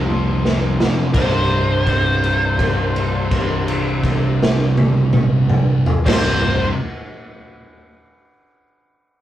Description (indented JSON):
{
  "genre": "stoner and doom metal",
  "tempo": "42 BPM",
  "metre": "4/4",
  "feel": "straight",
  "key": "unclear",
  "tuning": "A4 = 439 Hz",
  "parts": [
    { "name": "cranked stack guitar", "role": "riff", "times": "0.0-6.7 s", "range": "C2 to F3", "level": "-22 LUFS", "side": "equal", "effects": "overdrive" },
    { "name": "thick fuzz guitar", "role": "riff", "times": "0.0-6.7 s", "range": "C2 to F3", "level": "-23 LUFS", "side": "left 1 dB", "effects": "distortion" },
    { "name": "thick fuzz guitar", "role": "riff", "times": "0.0-6.7 s", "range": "C2 to F3", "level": "-24 LUFS", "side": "right 4 dB", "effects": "none" },
    { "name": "growling picked electric bass", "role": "bass", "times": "0.0-6.7 s", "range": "C1 to C2", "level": "-25 LUFS", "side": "equal", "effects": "overdrive" },
    { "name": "raw garage drum kit", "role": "drums", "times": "0.5-6.4 s", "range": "crash cymbal, kick drum, snare drum, toms", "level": "-19 LUFS", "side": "equal", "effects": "none" },
    { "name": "fuzz lead guitar", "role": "melody", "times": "1.1-6.7 s", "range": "C5", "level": "-22 LUFS", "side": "left 1 dB", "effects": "wah, distortion" }
  ],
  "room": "moderate small room reverb, RT60 0.5 s",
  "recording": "rough rehearsal-room recording, warm saturation",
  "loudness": "-15 LUFS",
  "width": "side -12 dB against mid",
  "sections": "0.0-1.1 A section; 1.1-6.9 B section",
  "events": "slowing down 0.0-1.1; drum fill 0.4-1.1; held note 1.1-6.1",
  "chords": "0.0 F5; 1.1 C5"
}